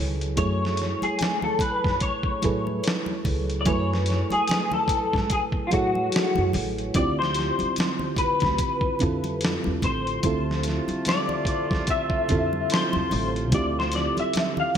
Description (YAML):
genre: R&B, neo-soul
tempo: 73 BPM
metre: 4/4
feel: swing 59% on 16ths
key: unclear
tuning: A4 = 440 Hz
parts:
  - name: mellow FM electric piano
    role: accompaniment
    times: 0.0-14.8 s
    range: D3 to G#5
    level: -28 LUFS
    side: right 2 dB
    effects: chorus
  - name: upright bass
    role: bass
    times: 0.0-14.2 s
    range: A1 to A2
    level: -28 LUFS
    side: equal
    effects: none
  - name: dusty soul sampler-style drum kit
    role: drums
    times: 0.2-14.8 s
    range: hi-hat, kick drum, snare drum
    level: -28 LUFS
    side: equal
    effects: gated reverb
  - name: electric guitar through a small old amp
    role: melody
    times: 0.4-14.8 s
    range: E#4 to F5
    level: -26 LUFS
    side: left 2 dB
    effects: ensemble chorus
  - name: congas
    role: percussion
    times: 0.4-14.8 s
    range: none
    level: -35 LUFS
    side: left 2 dB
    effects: none
  - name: warm horn section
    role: stabs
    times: 10.2-14.3 s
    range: C3 to F4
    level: -34 LUFS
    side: right 3 dB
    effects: digital delay
room: light reverb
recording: bright 1980s-style digital production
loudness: -22 LUFS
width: side -8 dB against mid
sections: 0.0-14.8 A section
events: none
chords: 0.0 F#m11; 6.9 Dm11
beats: | 0.37 1.19 2.01 2.84 | 3.66 4.48 5.30 6.12 | 6.95 7.77 8.59 9.41 | 10.23 11.06 11.88 12.70 | 13.52 14.34